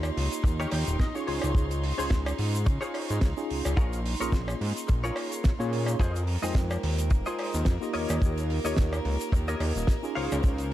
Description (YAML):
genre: nu-disco, nu disco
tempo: 108 BPM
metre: 4/4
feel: swing 55% on 16ths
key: unclear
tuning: A4 = 442 Hz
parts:
  - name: tine electric piano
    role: accompaniment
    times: 0.0-10.7 s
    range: Ab3 to C6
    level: -34 LUFS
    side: equal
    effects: overdrive, medium stereo tremolo, dub echo
  - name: bright chamber string section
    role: sustained chords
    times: 0.0-10.7 s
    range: Bb3 to C6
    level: -38 LUFS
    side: right 1 dB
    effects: sidechain pumping
  - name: direct-recorded clean electric guitar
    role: riff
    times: 0.0-10.7 s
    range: Eb4 to G5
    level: -35 LUFS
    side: left 1 dB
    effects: ensemble chorus, dub echo
  - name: fat analog bass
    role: bass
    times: 0.0-10.7 s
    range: Eb1 to Db3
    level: -29 LUFS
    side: equal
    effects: sidechain pumping
  - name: damped 70s drum kit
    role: drums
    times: 0.0-10.7 s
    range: hi-hat, shaker, snare drum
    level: -36 LUFS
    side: right 2 dB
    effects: none
  - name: cowbell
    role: percussion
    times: 0.0-10.4 s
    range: none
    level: -38 LUFS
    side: right 1 dB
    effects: none
  - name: kick drum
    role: drums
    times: 0.4-10.6 s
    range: none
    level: -24 LUFS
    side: equal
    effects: none
room: studio ambience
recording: dark, warm production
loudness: -25 LUFS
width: side -13 dB against mid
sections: 0.0-10.7 A section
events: clean electric guitar fill 0.4-1.6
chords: 0.0 Eb7; 1.3 Dbmaj7; 3.8 Bbm7; 6.0 Fm7; 7.9 Eb7; 10.2 Dbmaj7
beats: 0.44 1.00 | 1.55 2.11 2.66 3.22 | 3.77 4.33 4.88 5.44 | 6.00 6.55 7.11 7.66 | 8.22 8.77 9.33 9.88 | 10.44